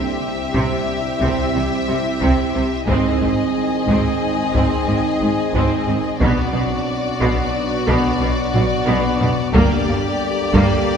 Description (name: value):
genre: cinematic, hybrid orchestral and electronic film score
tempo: 90 BPM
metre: 5/4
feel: straight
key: unclear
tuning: A4 = 441 Hz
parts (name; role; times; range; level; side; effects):
- warm symphonic violin section; melody; 0.0-11.0 s; D5 to E5; -26 LUFS; left 5 dB; none
- warm symphonic violin section; second line; 0.0-11.0 s; F#4 to Ab4; -26 LUFS; left 2 dB; none
- dark trombone section; sustained chords; 0.0-11.0 s; B2 to Ab3; -29 LUFS; right 3 dB; none
- glassy FM pad; sustained chords; 0.0-11.0 s; F#3 to D5; -26 LUFS; right 3 dB; ensemble chorus, built-in reverb
- mellow French horn section; sustained chords; 0.0-11.0 s; Bb3 to E4; -26 LUFS; left 2 dB; none
- soft round pluck; arpeggios; 0.0-10.7 s; C3 to B4; -30 LUFS; right 3 dB; none
- warm symphonic viola section; accompaniment; 0.5-10.9 s; F#3 to C4; -24 LUFS; right 1 dB; none
- rich symphonic cello section; bass; 0.5-10.6 s; G2 to C3; -24 LUFS; right 1 dB; none
- rich symphonic double bass section; bass; 0.5-10.6 s; G1 to C2; -25 LUFS; right 1 dB; none
- taiko ensemble; drums; 0.5-11.0 s; none; -24 LUFS; left 1 dB; none
room: wet scoring stage reverb, RT60 2.1 s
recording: recorded in a church or concert hall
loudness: -16 LUFS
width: side -7 dB against mid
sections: 0.0-11.0 A section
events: drum fill 8.5-9.5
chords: 0.0 C; 2.9 Ab; 6.2 Bm; 9.5 Gm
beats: 0.21 0.88 1.54 2.21 | 2.88 3.54 4.21 4.88 5.54 | 6.21 6.88 7.54 8.21 8.88 | 9.54 10.21 10.88